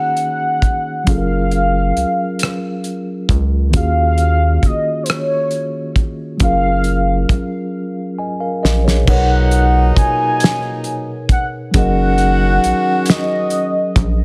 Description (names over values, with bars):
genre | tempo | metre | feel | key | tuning
slow six-eight R&B | 45 BPM (dotted quarters) | 6/8 | straight | F# major | A4 = 439 Hz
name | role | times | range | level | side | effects
warm velvety synth lead | melody | 0.0-14.1 s | B#4 to G#5 | -21 LUFS | equal | chorus
mellow tine electric piano | accompaniment | 0.0-14.2 s | B2 to G#5 | -23 LUFS | equal | none
cloth-damped thuddy drum kit | drums | 0.2-14.2 s | crash cymbal, hi-hat, kick drum, rim click, snare drum | -18 LUFS | equal | none
rubbery square bass | bass | 1.1-14.2 s | F#1 to D#2 | -18 LUFS | equal | none
warm horn section | stabs | 9.1-13.9 s | A#2 to F#4 | -26 LUFS | equal | none
room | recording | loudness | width
small room ambience | none | -16 LUFS | mono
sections
0.0-9.1 A section; 9.1-14.2 B section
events
drum fill 7.7-9.1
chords
0.0 D#m7; 1.1 F#maj9; 3.7 D#m11; 9.1 Bmaj9; 11.7 F#69